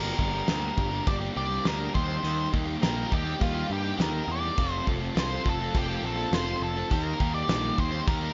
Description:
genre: classic rock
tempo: 103 BPM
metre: 4/4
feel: straight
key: unclear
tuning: A4 = 441 Hz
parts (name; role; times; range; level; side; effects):
- octave-fuzz lead guitar; melody; 0.0-8.3 s; F4 to D5; -34 LUFS; equal; distortion
- overdriven electric guitar; riff; 0.0-8.3 s; G2 to A4; -35 LUFS; equal; none
- fuzz picked electric bass; bass; 0.0-8.3 s; F1 to G2; -34 LUFS; equal; overdrive
- cloth-damped thuddy drum kit; drums; 0.2-8.2 s; crash cymbal, kick drum, snare drum; -32 LUFS; equal; none
room: little or no reverb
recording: nothing above 7.5 kHz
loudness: -28 LUFS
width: mono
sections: 0.0-8.3 A section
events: none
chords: 0.0 Gm; 1.9 Eb; 4.6 F; 6.9 Eb

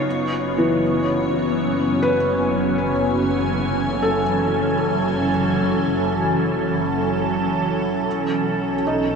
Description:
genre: ambient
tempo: 60 BPM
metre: 4/4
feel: straight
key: F# dorian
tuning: A4 = 440 Hz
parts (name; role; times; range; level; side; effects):
- evolving wavetable pad; sustained chords; 0.0-9.2 s; B2 to G#5; -20 LUFS; equal; ensemble chorus, built-in reverb, phaser
- felt-muted upright piano; arpeggios; 0.0-9.2 s; E3 to B4; -25 LUFS; left 1 dB; ping-pong delay
- clear studio double bass section; bass; 0.0-9.2 s; F#1 to B1; -29 LUFS; equal; none
- bowed-like drone; drone; 0.0-9.2 s; F#3 to C#4; -26 LUFS; equal; built-in reverb
room: wet huge ambient reverb, RT60 8.2 s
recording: nothing above 11.0 kHz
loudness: -18 LUFS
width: side -5 dB against mid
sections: 0.1-9.2 A section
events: none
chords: 0.1 F#m7; 8.1 B7

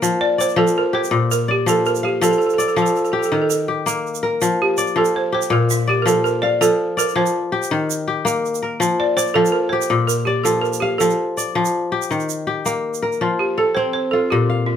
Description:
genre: west african traditional, West African string and xylophone music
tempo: 109 BPM (dotted quarters)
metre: 12/8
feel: straight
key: F mixolydian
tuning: A4 = 440 Hz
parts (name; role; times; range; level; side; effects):
- kora; arpeggios; 0.0-14.8 s; Bb2 to F5; -19 LUFS; left 3 dB; none
- egg shaker; percussion; 0.0-13.2 s; none; -27 LUFS; right 10 dB; none
- balafon; melody; 0.2-14.8 s; F4 to D5; -19 LUFS; right 3 dB; none
room: moderate studio reverb, RT60 0.6 s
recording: band playing live in one room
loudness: -16 LUFS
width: side -8 dB against mid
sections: 0.0-13.2 A section; 13.2-14.8 B section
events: none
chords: 0.0 Fsus2; 1.1 Bb; 2.2 F69; 3.3 Eb; 4.4 Fsus2; 5.5 Bb; 6.6 F; 7.7 Eb; 8.8 Fsus2; 9.9 Bb; 11.0 F; 12.1 Eb; 13.2 F

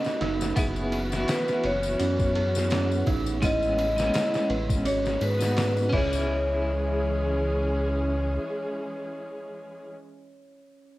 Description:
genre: trip hop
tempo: 84 BPM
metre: 4/4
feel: swing 56% on 16ths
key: C# minor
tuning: A4 = 440 Hz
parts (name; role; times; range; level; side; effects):
- vibraphone with medium hard mallets; melody; 0.0-9.9 s; B4 to D#5; -29 LUFS; left 1 dB; vintage 12-bit sampler grit, cassette tape, tape echo, plate reverb
- clean electric guitar; accompaniment; 0.0-10.0 s; G#3 to G#4; -32 LUFS; equal; tremolo, cassette tape, tape echo
- rich symphonic string section; sustained chords; 0.0-9.9 s; C#3 to G#4; -34 LUFS; equal; cassette tape
- dark detuned synth bell; arpeggios; 0.0-11.0 s; C#4 to B4; -35 LUFS; right 8 dB; chorus, cassette tape, tape echo
- tambourine and triangle; percussion; 0.0-6.3 s; none; -43 LUFS; left 11 dB; none
- trip hop sampler-style drum kit; drums; 0.1-6.1 s; crash cymbal, kick drum, ride cymbal, snare drum; -30 LUFS; equal; cassette tape
- round analog bass; bass; 0.2-8.4 s; F#1 to G#2; -28 LUFS; equal; tube saturation
room: light reverb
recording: home recording on cassette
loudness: -23 LUFS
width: side -17 dB against mid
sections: 0.0-6.3 A section; 6.3-9.1 B section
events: none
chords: 0.0 B7; 0.6 F#7sus4; 3.4 Amaj7; 4.9 G#m7; 5.9 C#m

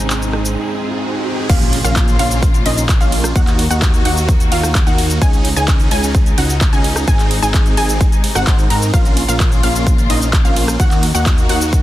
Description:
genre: EDM, festival progressive house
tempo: 129 BPM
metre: 4/4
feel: straight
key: unclear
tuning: A4 = 440 Hz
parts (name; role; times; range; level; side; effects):
- felt-muted upright piano; accompaniment; 0.0-1.5 s; Ab2 to Ab4; -26 LUFS; right 4 dB; sidechain pumping, tape echo
- warm studio string section; sustained chords; 0.0-11.8 s; C3 to Gb4; -26 LUFS; left 3 dB; sidechain pumping
- supersaw chords; riff; 0.0-11.8 s; Bb3 to C5; -21 LUFS; right 1 dB; vintage 12-bit sampler grit, sidechain pumping, tape echo
- fat analog bass; bass; 0.0-11.8 s; Ab1 to Ab2; -19 LUFS; equal; sidechain pumping
- riser and impact; sound effects; 0.0-3.4 s; none; -25 LUFS; equal; none
- big-room dance drum kit; drums; 0.1-11.8 s; crash cymbal, handclaps, hi-hat, ride cymbal, rim click, shaker; -22 LUFS; equal; overdrive
- wide unison pluck; arpeggios; 1.5-11.8 s; Eb5 to C6; -23 LUFS; equal; sidechain pumping, tape echo
- electronic kick drum; drums; 1.5-11.8 s; none; -14 LUFS; equal; overdrive
room: digital ambience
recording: dense, heavily limited modern master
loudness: -12 LUFS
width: side -14 dB against mid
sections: 0.0-1.5 A section; 1.5-11.8 B section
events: riser 0.0-1.5; break 0.6-1.5; drop 1.5-11.8; impact 1.5-3.4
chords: 0.0 Ab; 1.5 Bbm; 3.4 Ebm; 5.2 Dbsus2; 7.1 Ab; 8.9 Bbm; 10.8 Ebm

